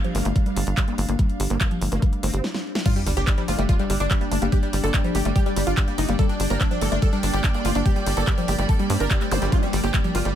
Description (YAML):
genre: psychedelic trance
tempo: 144 BPM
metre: 4/4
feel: straight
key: G minor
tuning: A4 = 440 Hz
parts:
  - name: evolving wavetable pad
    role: sustained chords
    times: 0.0-10.4 s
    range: G3 to D4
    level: -32 LUFS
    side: left 1 dB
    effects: phaser, built-in reverb, sidechain pumping
  - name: woody wave-folded pluck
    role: riff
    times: 0.0-10.3 s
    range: F3 to G4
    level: -29 LUFS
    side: moving between left 7 dB and right 3 dB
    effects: chorus, auto-pan, sidechain pumping, tape echo
  - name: big-room dance drum kit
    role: drums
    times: 0.0-10.3 s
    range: crash cymbal, handclaps, hi-hat, snare drum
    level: -30 LUFS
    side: equal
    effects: none
  - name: dark studio string section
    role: texture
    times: 0.0-10.4 s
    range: D4 to G5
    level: -33 LUFS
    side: right 1 dB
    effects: sidechain pumping
  - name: vowel-sweep wobble bass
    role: second line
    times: 0.1-10.3 s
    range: F3 to C4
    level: -39 LUFS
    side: right 4 dB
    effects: wide subtle chorus, sidechain pumping, high-pass filter, tape echo
  - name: tight sequencer bass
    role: bass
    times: 0.1-10.3 s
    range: G1 to G2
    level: -24 LUFS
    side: equal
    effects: none
  - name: electronic kick drum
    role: drums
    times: 0.4-10.0 s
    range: none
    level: -21 LUFS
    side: equal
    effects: none
  - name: supersaw stab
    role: melody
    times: 2.9-10.3 s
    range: G3 to C5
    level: -28 LUFS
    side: right 1 dB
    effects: phaser, sidechain pumping, tape echo
  - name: sub drop and zap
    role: sound effects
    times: 2.9-4.5, 9.3-9.4 s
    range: none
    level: -32 LUFS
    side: equal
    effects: none
room: digital ambience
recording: none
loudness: -20 LUFS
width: side -10 dB against mid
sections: 0.0-2.9 A section; 2.9-10.4 B section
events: drum fill 2.4-2.9; stop 2.4-2.9; drop 2.9-10.4; impact 2.9-4.5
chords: 0.0 G5